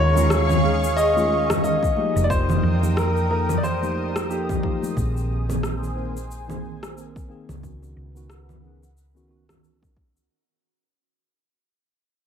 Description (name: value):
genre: sunset chillout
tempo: 90 BPM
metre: 4/4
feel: swing 58% on 16ths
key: unclear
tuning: A4 = 438 Hz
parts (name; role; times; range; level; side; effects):
- warm grand piano; melody; 0.0-4.8 s; G4 to Eb5; -24 LUFS; left 1 dB; vintage 12-bit sampler grit, tape echo, shimmer reverb
- mellow tine electric piano; accompaniment; 0.0-9.9 s; Eb3 to Bb4; -29 LUFS; moving between left 5 dB and right 6 dB; auto-pan, tape echo, shimmer reverb
- lush unison pad; sustained chords; 0.0-10.3 s; Ab4 to Eb6; -30 LUFS; equal; chorus, phaser, shimmer reverb
- hollow-body short-scale fingered electric bass; bass; 0.0-10.3 s; F1 to F2; -24 LUFS; equal; none
- electronic shaker, rim click and congas; drums; 0.2-10.3 s; none; -27 LUFS; equal; overdrive, analog delay
- congas; percussion; 0.2-4.9 s; none; -35 LUFS; right 3 dB; none
- electronic kick drum; drums; 1.8-10.1 s; none; -27 LUFS; equal; overdrive
room: moderate spring reverb, RT60 2.9 s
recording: echo-heavy mix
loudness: -19 LUFS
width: side -8 dB against mid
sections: 0.0-10.3 A section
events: fade-out 0.0-10.3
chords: 0.0 Eb9sus4; 2.0 F9sus4; 5.0 Bb9sus4; 7.6 Db9sus4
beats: 0.30 0.96 1.63 | 2.30 2.96 3.63 4.30 | 4.96 5.63 6.30 6.96 | 7.63 8.30 8.96 9.63